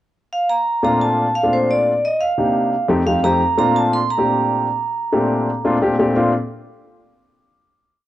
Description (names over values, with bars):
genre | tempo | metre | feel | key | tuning
jazz | 175 BPM | 4/4 | straight | Bb major | A4 = 440 Hz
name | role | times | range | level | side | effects
vibraphone with medium hard mallets | melody | 0.3-5.8 s | C5 to C6 | -18 LUFS | right 2 dB | plate reverb
warm grand piano | accompaniment | 0.8-6.3 s | F2 to G4 | -17 LUFS | left 1 dB | cassette tape, plate reverb
room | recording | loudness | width
moderate small room reverb, RT60 0.5 s | home recording on cassette | -15 LUFS | side -13 dB against mid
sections
0.0-0.7 pickup bar; 0.7-6.2 A section; 6.2-7.5 final chord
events
none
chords
0.0 N.C.; 0.7 Bbmaj9; 2.0 Cm9; 2.7 F9; 3.4 Bbmaj9